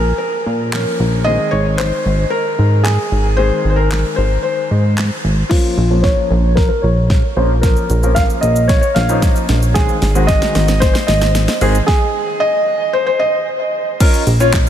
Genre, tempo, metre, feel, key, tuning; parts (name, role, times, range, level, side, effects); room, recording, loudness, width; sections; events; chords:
dance-pop; 113 BPM; 4/4; straight; Bb minor; A4 = 439 Hz
felt-muted upright piano; melody; 0.0-13.4 s; F4 to F5; -18 LUFS; left 1 dB; low-pass filter, diffuse ambient delay
clear baby grand piano; accompaniment; 0.0-14.7 s; Eb3 to Db5; -22 LUFS; left 1 dB; analog chorus, sidechain pumping, low-pass filter
chorused synth bass; bass; 0.0-14.7 s; Ab1 to Bb2; -14 LUFS; equal; sidechain pumping
pop drum kit; drums; 0.7-14.7 s; crash cymbal, handclaps, hi-hat, kick drum, shaker, snare drum; -18 LUFS; equal
moderate huge ambient reverb, RT60 6.1 s; dreamy mix soaked in reverb; -12 LUFS; side -10 dB against mid
0.0-5.5 A section; 5.5-14.0 B section
build-up 5.5-14.0; drum fill 5.5-11.9; filter sweep 5.5-14.0; stop 11.9-14.0
0.0 Bbm; 1.3 Ab; 5.5 Bbm; 9.8 Ab; 14.0 Bbm